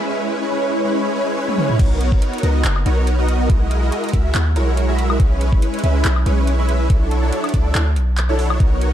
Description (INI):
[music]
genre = future bass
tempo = 141 BPM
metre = 4/4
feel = swing 54% on 16ths, half-time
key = B major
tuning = A4 = 439 Hz
[part]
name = supersaw chords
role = riff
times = 0.0-8.9 s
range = F#3 to E5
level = -20 LUFS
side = right 1 dB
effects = ensemble chorus, sidechain pumping, digital delay
[part]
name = dubstep drum kit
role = drums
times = 1.5-8.9 s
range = crash cymbal, handclaps, hi-hat, toms, woodblock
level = -25 LUFS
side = left 1 dB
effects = none
[part]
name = warm 808-style bass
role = bass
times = 1.8-8.9 s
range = F#1 to D#2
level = -17 LUFS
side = equal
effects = sidechain pumping
[part]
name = electronic kick drum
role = drums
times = 1.8-8.7 s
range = none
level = -16 LUFS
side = equal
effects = none
[sound]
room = light reverb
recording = dark, warm production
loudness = -15 LUFS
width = side -11 dB against mid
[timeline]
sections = 0.0-1.8 A section; 1.8-8.9 B section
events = build-up 0.0-1.8; drum fill 1.5-1.8; drop 1.8-8.9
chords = 0.0 E6/G#; 1.8 Bmaj9; 3.5 F#13/B; 5.2 E6/B; 6.9 Dmaj9/B